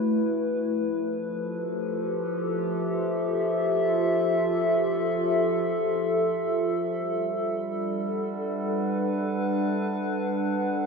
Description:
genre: ambient.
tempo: free time.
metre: none.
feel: none.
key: unclear.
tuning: A4 = 441 Hz.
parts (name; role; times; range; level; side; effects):
warbly tape-like pad; solo; 0.0-10.9 s; F3 to F#5; -24 LUFS; equal; chorus, built-in reverb, ping-pong delay.
room: wet cathedral reverb, RT60 5.6 s.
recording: none.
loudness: -24 LUFS.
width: side -4 dB against mid.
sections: 0.0-10.9 A section.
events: none.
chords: 0.0 A6; 0.6 Fmaj7; 6.9 Gmaj7.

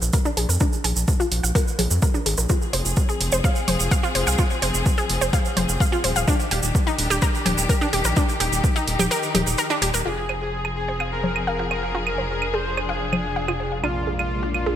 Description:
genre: melodic techno.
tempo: 127 BPM.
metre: 4/4.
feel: straight.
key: F dorian.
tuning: A4 = 440 Hz.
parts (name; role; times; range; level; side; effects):
gritty driven synth bass; bass; 0.0-14.8 s; Eb1 to F2; -26 LUFS; equal; sidechain pumping.
tube shaker; percussion; 0.0-10.0 s; none; -28 LUFS; right 6 dB; none.
analog pluck; arpeggios; 0.1-14.7 s; D4 to F5; -26 LUFS; equal; chorus, sidechain pumping, digital delay.
electronic hi-hat, congas and claves; drums; 0.1-14.6 s; none; -26 LUFS; equal; overdrive, sidechain pumping on hats, sidechain pumping on perc.
electronic kick drum; drums; 0.1-8.7 s; none; -20 LUFS; equal; overdrive.
rich studio string section; sustained chords; 2.5-14.8 s; Eb3 to Ab4; -28 LUFS; left 3 dB; sidechain pumping.
soft supersaw; melody; 10.1-14.8 s; F4 to C5; -28 LUFS; left 1 dB; cassette tape, sidechain pumping, digital delay.
swarming drone; drone; 11.8-14.8 s; F2 to C3; -38 LUFS; right 1 dB; built-in reverb, lush chorus, sidechain pumping.
room: moderate lush hall reverb, RT60 1.8 s.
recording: bright 1980s-style digital production.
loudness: -19 LUFS.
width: side -10 dB against mid.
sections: 0.0-10.1 A section; 10.1-14.8 B section.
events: filter sweep on synth arpeggio sound 0.0-10.1, 10.1-14.8; kick drops out 9.1-10.1.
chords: 0.0 Bb7(no3); 2.5 Fm; 6.3 Ebmaj7; 10.1 Fm; 13.8 Bb7.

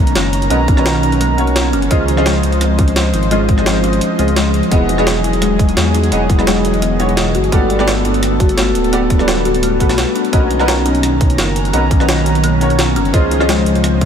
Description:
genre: liquid drum and bass.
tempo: 171 BPM.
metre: 4/4.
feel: straight.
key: B major.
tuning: A4 = 440 Hz.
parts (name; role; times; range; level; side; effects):
warm analog pad; sustained chords; 0.0-14.1 s; D#3 to A#5; -19 LUFS; right 1 dB; chorus, sidechain pumping.
kalimba; arpeggios; 0.0-14.1 s; G#3 to F#4; -19 LUFS; left 5 dB; diffuse ambient delay.
dark detuned saw bass; bass; 0.0-14.1 s; D1 to E2; -17 LUFS; equal; none.
jungle sampler-style drum kit; drums; 0.1-14.1 s; hi-hat, rim click, snare drum; -20 LUFS; equal; overdrive.
warm baby grand piano; accompaniment; 0.5-13.5 s; E3 to D#5; -19 LUFS; right 1 dB; ensemble chorus, diffuse ambient delay.
electronic kick drum; drums; 0.7-14.1 s; none; -14 LUFS; equal; none.
room: moderate cathedral reverb, RT60 5.8 s.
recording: dreamy mix soaked in reverb.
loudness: -11 LUFS.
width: side -8 dB against mid.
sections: 0.0-14.1 A section.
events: none.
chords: 0.0 Bmaj9; 1.9 C#maj9; 4.7 Emaj9; 7.3 Gmaj9; 10.3 Bmaj9; 13.1 C#maj9.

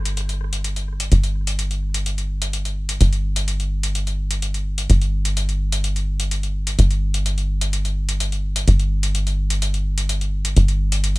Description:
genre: melodic techno.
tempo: 127 BPM.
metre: 4/4.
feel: straight.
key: unclear.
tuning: A4 = 442 Hz.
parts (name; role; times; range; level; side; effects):
tight sequencer bass; bass; 0.0-11.2 s; G1; -19 LUFS; equal; none.
electronic hi-hat; drums; 0.1-11.2 s; none; -26 LUFS; left 1 dB; none.
room: little or no reverb.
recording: echo-heavy mix.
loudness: -19 LUFS.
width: side -21 dB against mid.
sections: 0.0-11.2 A section.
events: none.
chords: none.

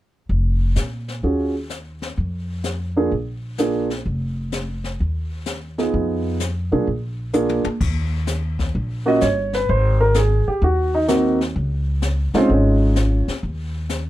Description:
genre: jazz piano trio.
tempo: 128 BPM.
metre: 4/4.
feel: swing 68% on 8ths.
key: Eb minor.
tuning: A4 = 444 Hz.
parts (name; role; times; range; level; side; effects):
upright bass; bass; 0.3-14.1 s; F1 to Bb2; -22 LUFS; equal; none.
jazz brush drum kit; drums; 0.3-14.1 s; brushed snare drum, crash cymbal, hi-hat, kick drum, snare drum, toms; -29 LUFS; left 3 dB; none.
warm upright piano; melody; 1.2-13.3 s; Ab3 to Eb5; -18 LUFS; right 1 dB; none.
room: little or no reverb.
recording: dark, warm production.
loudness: -18 LUFS.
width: side -14 dB against mid.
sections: 0.3-7.8 A section; 7.8-14.1 B section.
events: drum fill 7.3-7.8.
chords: 0.3 Fsus4; 1.2 Ebm11; 2.2 N.C.; 3.1 Bb7; 4.1 N.C.; 5.9 Fm7b5; 6.9 Bb7; 7.8 Eb7(no3); 9.7 Ab7; 11.6 Db; 13.4 N.C..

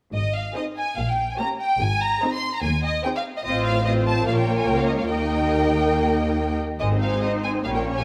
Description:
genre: quick classical-period movement for string orchestra.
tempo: 144 BPM.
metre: 4/4.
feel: straight.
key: Ab major.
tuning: A4 = 435 Hz.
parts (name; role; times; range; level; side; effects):
rich studio violin section; melody; 0.1-8.0 s; Eb5 to C6; -28 LUFS; equal; none.
clear symphonic double bass section; bass; 0.1-8.0 s; Ab1 to Eb2; -30 LUFS; equal; none.
rich symphonic cello section; bass; 0.1-8.0 s; Db2 to Bb2; -29 LUFS; equal; none.
warm symphonic violin section; second line; 0.5-8.0 s; G3 to Eb5; -29 LUFS; equal; none.
warm symphonic viola section; accompaniment; 0.6-8.0 s; Bb3 to F4; -29 LUFS; equal; none.
room: moderate scoring stage reverb, RT60 1.6 s.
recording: none.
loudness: -23 LUFS.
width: mono.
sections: 0.1-8.0 A section.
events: none.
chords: 0.1 Ab; 1.0 Gdim/Bb; 1.8 Ab; 3.5 F/A; 4.3 Bbm; 5.1 Eb; 6.8 Ab.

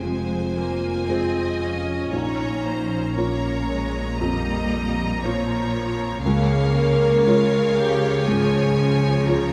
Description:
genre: cinematic, emotional film score for orchestra.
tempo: 58 BPM.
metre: 4/4.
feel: rubato.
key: unclear.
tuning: A4 = 442 Hz.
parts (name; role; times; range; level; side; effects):
rich symphonic violin section; melody; 0.0-9.5 s; F5 to Bb5; -35 LUFS; equal; none.
clear symphonic viola section; accompaniment; 0.0-9.5 s; F3 to G4; -32 LUFS; equal; none.
felt-muted upright piano; accompaniment; 0.0-9.5 s; Bb1 to Db5; -30 LUFS; equal; none.
dark French horn section; sustained chords; 0.0-9.5 s; Bb3 to Bb4; -27 LUFS; equal; none.
concert harp; arpeggios; 0.0-9.5 s; Bb2 to F5; -34 LUFS; equal; none.
rich symphonic cello section; bass; 0.0-9.5 s; F2 to Db3; -30 LUFS; equal; none.
rich symphonic double bass section; bass; 0.0-9.5 s; F1 to Db2; -30 LUFS; equal; none.
clear studio violin section; second line; 0.1-9.5 s; C5 to Eb5; -34 LUFS; equal; none.
room: moderate concert hall reverb, RT60 2.3 s.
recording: none.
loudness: -22 LUFS.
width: mono.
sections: 0.0-9.5 A section.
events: none.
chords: 0.0 Fmadd9; 2.1 Bbm; 6.3 Db.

